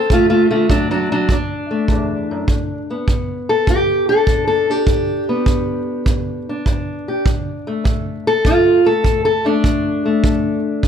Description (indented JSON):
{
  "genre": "acoustic country blues, solo or duo",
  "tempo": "101 BPM",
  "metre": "4/4",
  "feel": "swing 67% on 8ths",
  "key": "unclear",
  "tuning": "A4 = 439 Hz",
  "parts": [
    { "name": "fingerpicked steel-string acoustic guitar", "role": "melody", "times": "0.0-10.9 s", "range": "D2 to A4", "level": "-16 LUFS", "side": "left 1 dB", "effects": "plate reverb" },
    { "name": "kick drum", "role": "drums", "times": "0.1-10.9 s", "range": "none", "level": "-18 LUFS", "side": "right 1 dB", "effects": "none" }
  ],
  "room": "moderate studio reverb, RT60 0.5 s",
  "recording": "none",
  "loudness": "-14 LUFS",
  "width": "side -8 dB against mid",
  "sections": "0.0-10.9 A section",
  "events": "steel-string acoustic guitar solo 0.0-10.9",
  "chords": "0.0 D; 2.5 G; 7.3 D5",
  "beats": "| 0.11 0.70 1.30 1.90 | 2.49 3.09 3.69 4.28 | 4.88 5.47 6.07 6.67 | 7.26 7.86 8.46 9.05 | 9.65 10.25 10.85"
}